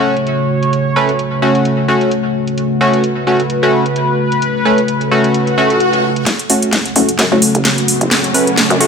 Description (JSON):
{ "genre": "bass house", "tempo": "130 BPM", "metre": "4/4", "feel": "swing 56% on 16ths", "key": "F# minor", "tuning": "A4 = 436 Hz", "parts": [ { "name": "sweeping resonant pad", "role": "sustained chords", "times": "0.0-8.9 s", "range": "C#3 to C#5", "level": "-16 LUFS", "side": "equal", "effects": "chorus" }, { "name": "band-passed chord stab", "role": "stabs", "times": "0.0-8.9 s", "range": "A3 to B4", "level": "-15 LUFS", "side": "equal", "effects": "chorus, tape echo" }, { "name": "garage drum kit", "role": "drums", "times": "0.2-8.9 s", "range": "hi-hat, snare drum", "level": "-15 LUFS", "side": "equal", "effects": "low-pass filter on hats, studio reverb, low-pass filter on snare" }, { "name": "swell and riser", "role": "sound effects", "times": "5.5-8.9 s", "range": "none", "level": "-20 LUFS", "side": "left 1 dB", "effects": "none" }, { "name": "hollow knocking FM bass", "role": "bass", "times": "6.3-8.9 s", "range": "F#1 to F#2", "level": "-18 LUFS", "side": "left 1 dB", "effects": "overdrive, high-pass filter" } ], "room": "moderate lush hall reverb, RT60 2.1 s", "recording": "none", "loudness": "-11 LUFS", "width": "side -6 dB against mid", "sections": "0.0-6.3 A section; 6.3-8.9 B section", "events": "swell 5.5-6.3; build-up 6.3-8.9; drum fill 6.3-8.9; riser 6.3-8.9; filter sweep on synth stab 6.3-8.9; filter sweep on analog synth pad 6.3-8.9", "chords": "0.0 F#m" }